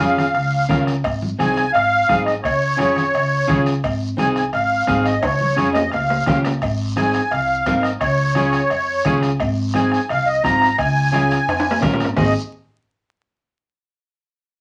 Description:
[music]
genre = latin, cumbia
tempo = 172 BPM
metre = 4/4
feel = straight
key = Ab major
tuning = A4 = 440 Hz
[part]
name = musette accordion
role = melody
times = 0.0-12.3 s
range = Db5 to Bb5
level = -21 LUFS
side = equal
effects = none
[part]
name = electric guitar at the edge of break-up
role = accompaniment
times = 0.0-12.3 s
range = C4 to Bb4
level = -24 LUFS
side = equal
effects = none
[part]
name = upright bass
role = bass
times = 0.0-12.3 s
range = Ab1 to F2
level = -26 LUFS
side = equal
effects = none
[part]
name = bombo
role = percussion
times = 0.0-12.3 s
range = none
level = -31 LUFS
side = equal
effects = none
[part]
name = congas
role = percussion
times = 0.0-12.3 s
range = none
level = -27 LUFS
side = equal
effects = none
[part]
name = guiro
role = percussion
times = 0.0-12.3 s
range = none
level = -39 LUFS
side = equal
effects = none
[part]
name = cowbell and timbales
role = percussion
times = 1.0-12.2 s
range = none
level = -28 LUFS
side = equal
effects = none
[sound]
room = wet studio ambience, RT60 0.5 s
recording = vinyl crackle, nothing above 10.3 kHz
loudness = -18 LUFS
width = mono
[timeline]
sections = 0.0-6.6 A section; 6.6-12.2 B section; 12.2-13.6 C section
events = drum fill 5.2-6.6, 11.5-12.2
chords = 0.0 Db; 1.0 Ab; 2.4 Db; 3.8 Ab; 5.2 Db; 6.6 Ab; 8.0 Db; 9.4 Ab; 10.8 Db; 12.2 Ab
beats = 0.01 0.35 0.70 | 1.05 1.40 1.75 2.09 | 2.44 2.79 3.14 3.49 | 3.83 4.18 4.53 4.88 | 5.23 5.57 5.92 6.27 | 6.62 6.97 7.32 7.66 | 8.01 8.36 8.71 9.05 | 9.40 9.75 10.10 10.44 | 10.79 11.14 11.48 11.83 | 12.18

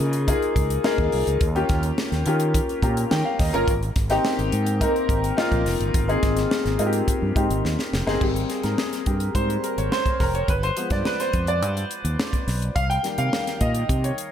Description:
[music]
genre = polished 1980s jazz-funk pop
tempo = 106 BPM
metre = 4/4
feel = straight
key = Ab major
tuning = A4 = 440 Hz
[part]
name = warm grand piano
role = accompaniment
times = 0.0-14.3 s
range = Eb3 to Bb5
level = -24 LUFS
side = left 1 dB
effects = lush chorus
[part]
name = fretless electric bass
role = bass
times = 0.0-14.1 s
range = F1 to Eb3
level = -24 LUFS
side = equal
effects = none
[part]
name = tight funk drum kit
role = drums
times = 0.1-14.3 s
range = crash cymbal, hi-hat, kick drum, snare drum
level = -25 LUFS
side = equal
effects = gated reverb
[sound]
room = light reverb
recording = none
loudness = -20 LUFS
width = side -9 dB against mid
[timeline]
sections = 0.0-8.2 A section; 8.2-14.3 B section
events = grand piano fill 2.5-3.7; drum fill 7.6-8.2; grand piano solo 8.2-14.3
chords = 0.0 Db69; 1.4 Eb9; 3.7 Abmaj9; 10.5 G7b9; 12.8 Cm7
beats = 0.28 0.84 | 1.41 1.98 2.54 3.11 | 3.68 4.24 4.81 5.38 | 5.94 6.51 7.08 7.64 | 8.21 8.78 9.35 9.92 | 10.48 11.05 11.62 12.19 | 12.76 13.32 13.89

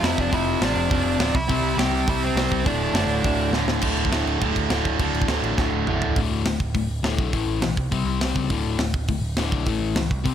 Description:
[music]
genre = punk rock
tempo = 206 BPM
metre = 4/4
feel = straight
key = unclear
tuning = A4 = 436 Hz
[part]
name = nasal lead guitar with a parked wah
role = melody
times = 0.0-3.5 s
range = C4 to G5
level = -27 LUFS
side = right 2 dB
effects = overdrive
[part]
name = distorted electric guitar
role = riff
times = 0.0-10.3 s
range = D2 to C4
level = -26 LUFS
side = left 8 dB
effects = distortion
[part]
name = overdriven electric guitar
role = riff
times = 0.0-6.2 s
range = D2 to C4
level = -26 LUFS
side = right 17 dB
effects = none
[part]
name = overdriven picked electric bass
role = bass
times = 0.0-10.3 s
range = D1 to F2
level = -27 LUFS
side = right 1 dB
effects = none
[part]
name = tight metal drum kit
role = drums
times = 0.0-10.3 s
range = crash cymbal, hi-hat, kick drum, snare drum, toms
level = -26 LUFS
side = right 1 dB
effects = none
[sound]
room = little or no reverb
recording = none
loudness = -20 LUFS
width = side -9 dB against mid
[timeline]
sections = 0.0-3.8 A section; 3.8-6.2 B section; 6.2-10.3 C section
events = drum fill 3.5, 5.6-6.2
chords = 0.0 F5; 1.4 C; 2.7 D5; 7.3 A5; 7.8 C5; 8.5 D5; 9.7 A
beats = 0.04 | 0.33 0.62 0.92 1.21 | 1.50 1.79 2.08 2.37 | 2.66 2.95 3.25 3.54 | 3.83 4.12 4.41 4.70 | 5.00 5.29 5.58 5.87 | 6.16 6.46 6.75 7.04 | 7.33 7.62 7.92 8.21 | 8.50 8.79 9.08 9.38 | 9.67 9.96 10.25

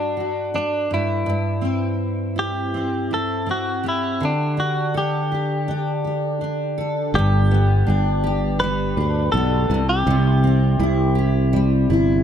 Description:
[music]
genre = acoustic pop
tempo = 82 BPM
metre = 4/4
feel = swing 55% on 16ths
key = G major from 7.1 s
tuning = A4 = 444 Hz
[part]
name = direct-recorded clean electric guitar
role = melody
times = 0.0-11.3 s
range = D4 to B4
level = -24 LUFS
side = equal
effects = analog chorus, tape echo
[part]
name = fingerpicked steel-string acoustic guitar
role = accompaniment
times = 0.0-12.2 s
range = G2 to A4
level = -21 LUFS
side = equal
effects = double-tracked left and right
[part]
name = sustaining fretless electric bass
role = bass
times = 7.1-12.2 s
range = G1 to D2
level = -19 LUFS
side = equal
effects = none
[sound]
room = light reverb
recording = none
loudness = -18 LUFS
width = side -9 dB against mid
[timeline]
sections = 0.0-7.1 A section; 7.1-12.2 B section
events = none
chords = 0.0 D/G; 0.9 Am7/G (rootless); 4.2 Dsus4; 7.1 G; 9.7 C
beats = 0.54 | 1.27 2.00 2.74 3.47 | 4.21 4.94 5.67 6.41 | 7.14 7.87 8.61 9.34 | 10.07 10.80 11.53

